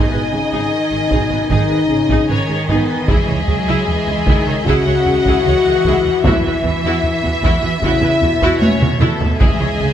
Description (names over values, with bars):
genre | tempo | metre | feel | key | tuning
cinematic, epic orchestral film score | 76 BPM | 4/4 | straight | C# minor | A4 = 439 Hz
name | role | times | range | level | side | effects
rich symphonic violin section | melody | 0.0-9.9 s | G#4 to F#5 | -23 LUFS | left 2 dB | none
rich symphonic violin section | second line | 0.0-9.9 s | D#5 to G#5 | -25 LUFS | left 1 dB | none
rich symphonic viola section | accompaniment | 0.0-9.9 s | D#4 to C#5 | -23 LUFS | right 2 dB | none
mellow French horn section | sustained chords | 0.0-9.9 s | G#3 to F#4 | -19 LUFS | left 4 dB | none
warm symphonic cello section | bass | 0.0-9.9 s | B2 to F#3 | -22 LUFS | right 2 dB | none
rich symphonic double bass section | bass | 0.1-9.9 s | G#1 to E2 | -22 LUFS | right 3 dB | none
taiko ensemble | drums | 1.1-9.9 s | none | -18 LUFS | equal | none
room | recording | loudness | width
light reverb | none | -13 LUFS | side -10 dB against mid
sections
0.0-9.9 A section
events
drum fill 8.6-9.4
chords
0.0 G#m; 3.1 C#madd9; 6.2 Esus2; 9.4 C#madd9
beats
0.72 1.51 2.30 | 3.09 3.88 4.67 5.46 | 6.25 7.04 7.83 8.62 | 9.40